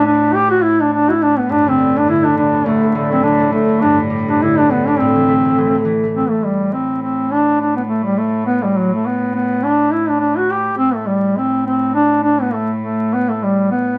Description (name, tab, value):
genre	celtic folk, Celtic reel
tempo	206 BPM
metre	4/4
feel	swing 58% on 8ths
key	A dorian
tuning	A4 = 440 Hz
part	mellow duduk	melody	0.0-14.0 s	F#3 to G4	-17 LUFS	equal	none
part	rich cello	drone	0.0-14.0 s	A2	-24 LUFS	equal	none
part	concert harp	accompaniment	1.5-9.4 s	D2 to B3	-22 LUFS	equal	none
room	moderate studio reverb, RT60 0.6 s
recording	vinyl crackle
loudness	-16 LUFS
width	mono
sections	0.0-6.1 A section; 6.1-14.0 B section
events	none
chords	0.0 N.C.; 1.5 G; 2.7 D; 3.8 Gsus2; 5.0 Am; 6.1 N.C.